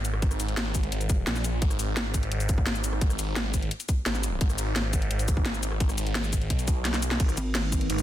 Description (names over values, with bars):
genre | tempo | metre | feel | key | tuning
dark technical drum and bass | 172 BPM | 4/4 | straight | G# minor | A4 = 441 Hz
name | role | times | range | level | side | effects
phased detuned saw bass | bass | 0.0-8.0 s | G#1 to B1 | -28 LUFS | equal | phaser, tube saturation
drum and bass drum kit | drums | 0.0-8.0 s | cabasa, hi-hat, ride cymbal, rim click, snare drum | -30 LUFS | left 1 dB | overdrive, studio reverb
electronic kick drum | drums | 0.2-7.8 s | none | -25 LUFS | equal | overdrive, studio reverb
deep dark ambient pad | sustained chords | 7.5-8.0 s | G#3 to B4 | -32 LUFS | right 2 dB | chorus, built-in reverb, sidechain pumping
pulsing pluck wobble bass | bass | 7.4-7.9 s | G#1 | -28 LUFS | equal | chorus
room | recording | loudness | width
little or no reverb | dense, heavily limited modern master | -24 LUFS | side -12 dB against mid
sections
0.0-8.0 A section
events
drum fill 6.9-7.2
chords
0.0 G#sus2; 1.6 N.C.; 4.4 G#m